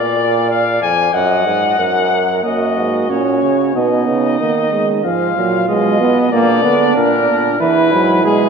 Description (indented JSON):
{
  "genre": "classical, imitative canzona for brass ensemble",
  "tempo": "93 BPM",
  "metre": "4/4",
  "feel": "straight",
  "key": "unclear",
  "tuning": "A4 = 437 Hz",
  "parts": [
    { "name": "clear trumpet", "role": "melody", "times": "0.0-8.5 s", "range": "G#4 to G#5", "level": "-17 LUFS", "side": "left 6 dB", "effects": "none" },
    { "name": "mellow flugelhorn", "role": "second line", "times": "0.0-8.5 s", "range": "D4 to D#5", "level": "-20 LUFS", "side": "right 5 dB", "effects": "none" },
    { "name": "clear euphonium", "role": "bass", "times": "0.0-8.5 s", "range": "E2 to D#3", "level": "-18 LUFS", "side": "right 2 dB", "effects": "none" },
    { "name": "warm trombone", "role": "accompaniment", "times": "2.4-8.5 s", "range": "E3 to D4", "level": "-16 LUFS", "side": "right 2 dB", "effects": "none" }
  ],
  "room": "wet church reverb, RT60 3.7 s",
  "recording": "none",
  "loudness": "-12 LUFS",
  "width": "side -5 dB against mid",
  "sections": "0.0-2.4 A section; 2.4-8.5 B section",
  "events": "none",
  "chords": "0.0 A#; 1.1 D#m/F#; 2.4 F#; 3.8 B; 5.1 Fdim/Ab; 6.3 A#; 7.6 E"
}